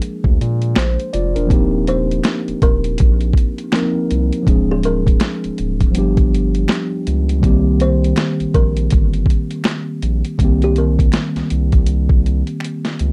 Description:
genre	lo-fi hip hop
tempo	81 BPM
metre	4/4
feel	swing 60% on 16ths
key	C minor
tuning	A4 = 440 Hz
part	mellow tine electric piano	accompaniment	0.0-13.1 s	Eb3 to D5	-22 LUFS	equal	cassette tape, low-pass filter
part	boom bap sampler-style drum kit	drums	0.0-13.1 s	hi-hat, kick drum, snare drum	-18 LUFS	equal	vintage 12-bit sampler grit
part	saturated sub bass	bass	0.3-13.1 s	D1 to Bb2	-20 LUFS	equal	none
part	finger snaps	percussion	0.8-12.8 s	none	-34 LUFS	equal	none
part	kalimba	melody	1.9-11.3 s	G4 to C5	-26 LUFS	equal	low-pass filter
room	light reverb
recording	dark, warm production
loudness	-16 LUFS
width	mono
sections	0.0-13.1 A section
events	drum fill 12.6-13.1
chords	0.0 Bb7; 1.5 Eb69; 4.5 Dm7b5; 5.9 G7; 7.4 Cm7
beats	0.02 0.76 | 1.50 2.24 2.98 3.73 | 4.47 5.21 5.95 6.69 | 7.43 8.17 8.91 9.65 | 10.39 11.13 11.87 12.62

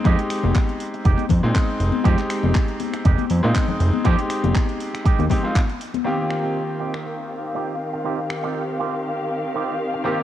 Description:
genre	nu-disco, nu disco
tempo	120 BPM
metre	4/4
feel	swing 55% on 16ths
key	Eb major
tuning	A4 = 440 Hz
part	bright grand piano	accompaniment	0.0-10.2 s	Eb3 to G4	-26 LUFS	equal	vintage 12-bit sampler grit, sidechain pumping, cassette tape, analog delay
part	electric guitar with an envelope filter	riff	0.1-10.2 s	Ab3 to G4	-30 LUFS	right 9 dB	wide subtle chorus, low-pass filter, cassette tape, analog delay
part	fat analog bass	bass	0.1-5.3 s	F1 to Bb2	-19 LUFS	equal	none
part	electronic kick drum	drums	0.1-5.7 s	none	-18 LUFS	equal	cassette tape
part	house drum kit	drums	0.1-8.4 s	finger snaps, handclaps, hi-hat	-33 LUFS	right 1 dB	cassette tape
part	congas	percussion	0.4-6.0 s	none	-27 LUFS	left 11 dB	none
part	dark studio string section	sustained chords	6.1-10.2 s	Eb3 to F5	-26 LUFS	left 2 dB	sidechain pumping, low-pass filter, cassette tape
room	light reverb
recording	home recording on cassette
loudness	-19 LUFS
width	side -12 dB against mid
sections	0.0-6.1 A section; 6.1-10.2 B section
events	filter sweep on clean electric guitar 6.1-10.2; filter sweep on string section 6.1-10.2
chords	0.0 Fm9; 6.1 Eb69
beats	| 0.05 0.55 1.05 1.55 | 2.05 2.55 3.05 3.55 | 4.05 4.55 5.05 5.55 | 6.05 6.55 7.05 7.55 | 8.05 8.55 9.05 9.55 | 10.05

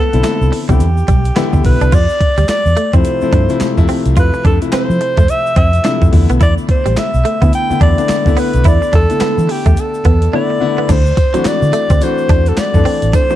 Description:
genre	R&B, new jack swing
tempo	107 BPM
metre	4/4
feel	swing 61% on 16ths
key	unclear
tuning	A4 = 440 Hz
part	warm alto saxophone	melody	0.0-13.4 s	G4 to G5	-17 LUFS	equal	none
part	direct-recorded clean electric guitar	riff	0.0-13.3 s	F#3 to F4	-22 LUFS	right 4 dB	wide subtle chorus
part	clear concert grand piano	accompaniment	0.1-13.4 s	C3 to A4	-19 LUFS	left 5 dB	none
part	vintage muted fingered electric bass	bass	0.1-13.1 s	A1 to F3	-13 LUFS	equal	none
part	clean 12-bit digital drum machine	drums	0.1-13.3 s	crash cymbal, handclaps, hi-hat, kick drum, snare drum, tambourine	-14 LUFS	equal	none
part	tube shaker	percussion	0.1-13.4 s	none	-41 LUFS	left 7 dB	none
room	little or no reverb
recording	dark, warm production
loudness	-10 LUFS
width	side -13 dB against mid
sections	0.0-1.9 A section; 1.9-10.9 B section; 10.9-13.4 C section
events	none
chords	0.0 Cmaj9; 0.8 Em7; 1.9 Fmaj7; 6.1 E7sus4; 10.9 D9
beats	0.24 0.80 1.36 | 1.92 2.48 3.04 3.60 | 4.17 4.73 5.29 5.85 | 6.41 6.97 7.53 8.09 | 8.65 9.21 9.77 10.33 | 10.89 11.46 12.02 12.58 | 13.14

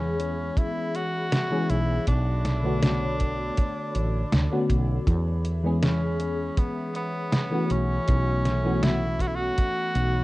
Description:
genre	vaporwave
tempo	80 BPM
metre	4/4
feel	straight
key	E mixolydian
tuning	A4 = 442 Hz
part	clear tenor saxophone	melody	0.0-10.2 s	B3 to F#4	-30 LUFS	equal	tape echo
part	mellow FM electric piano	accompaniment	0.0-10.2 s	D3 to C#5	-29 LUFS	left 1 dB	ensemble chorus, tape echo
part	warbly tape-like pad	sustained chords	0.0-10.2 s	G#4 to B5	-40 LUFS	left 1 dB	chorus, built-in reverb
part	woody fretless electric bass	bass	0.0-10.2 s	A1 to E2	-26 LUFS	equal	none
part	detuned 8-bit digital drum machine	drums	0.2-10.1 s	hi-hat, snare drum	-27 LUFS	equal	overdrive, vintage 12-bit sampler grit
part	kick drum	drums	0.6-9.7 s	none	-24 LUFS	equal	vintage 12-bit sampler grit
room	light reverb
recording	rough home demo mix, cassette tape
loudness	-23 LUFS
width	side -19 dB against mid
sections	0.0-10.2 A section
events	none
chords	0.0 E6; 2.1 Bm9; 5.1 E6; 7.7 B9sus4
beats	0.58 1.33 | 2.08 2.83 3.58 4.33 | 5.08 5.83 6.58 7.33 | 8.08 8.83 9.58

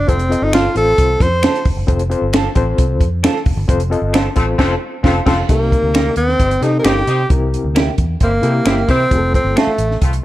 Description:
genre	uptempo 1960s-style soul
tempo	133 BPM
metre	4/4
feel	straight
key	unclear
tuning	A4 = 438 Hz
part	breathy tenor saxophone	melody	0.0-1.7, 5.5-10.0 s	A3 to C5	-17 LUFS	equal	none
part	vintage muted fingered electric bass	bass	0.0-10.2 s	F1 to C3	-18 LUFS	equal	none
part	overdriven reed electric piano	accompaniment	0.1-9.7 s	C3 to Eb5	-21 LUFS	left 4 dB	fast tremolo
part	compact cocktail drum kit	drums	0.1-10.2 s	crash cymbal, hi-hat, kick drum, snare drum	-16 LUFS	equal	none
part	electric guitar through a small old amp	stabs	0.5-9.7 s	Bb3 to A4	-25 LUFS	right 6 dB	lush chorus
part	finger snaps	percussion	0.5-9.7 s	none	-25 LUFS	left 4 dB	none
part	warm horn section	second line	4.1-10.1 s	A3 to G4	-25 LUFS	left 1 dB	none
room	light reverb, small room ambience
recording	dark, warm production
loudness	-13 LUFS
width	side -15 dB against mid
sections	0.0-5.5 A section; 5.5-10.2 B section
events	band accent 3.7-5.5; tenor saxophone solo 5.5-10.2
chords	0.0 F; 5.5 Cm7; 7.3 C7; 9.1 F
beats	| 0.08 0.53 0.98 1.43 | 1.88 2.33 2.79 3.24 | 3.69 4.14 4.59 5.04 | 5.49 5.94 6.40 6.85 | 7.30 7.75 8.21 8.66 | 9.11 9.56 10.02

